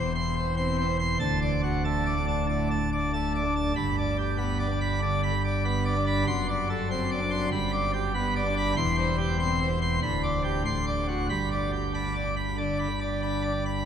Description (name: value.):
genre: classical, organ toccata.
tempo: 95 BPM.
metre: 4/4.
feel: straight.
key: G major.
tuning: A4 = 439 Hz.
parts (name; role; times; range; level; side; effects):
pipe organ, plenum; solo; 0.0-13.8 s; D1 to C6; -25 LUFS; equal; none.
room: wet cathedral reverb, RT60 5.7 s.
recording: minimal, uncompressed stereo recording.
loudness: -25 LUFS.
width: side -8 dB against mid.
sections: 0.0-13.9 A section.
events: none.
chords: 0.0 C/E; 1.2 D; 3.8 G; 6.3 D7/F#; 7.5 G; 8.8 C/E; 10.0 G/D; 10.7 D7; 11.3 G.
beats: 0.56 | 1.20 1.84 2.48 3.12 | 3.76 4.40 5.03 5.66 | 6.28 6.91 7.53 8.15 | 8.77 9.40 10.02 10.66 | 11.30 11.94 12.59 13.24.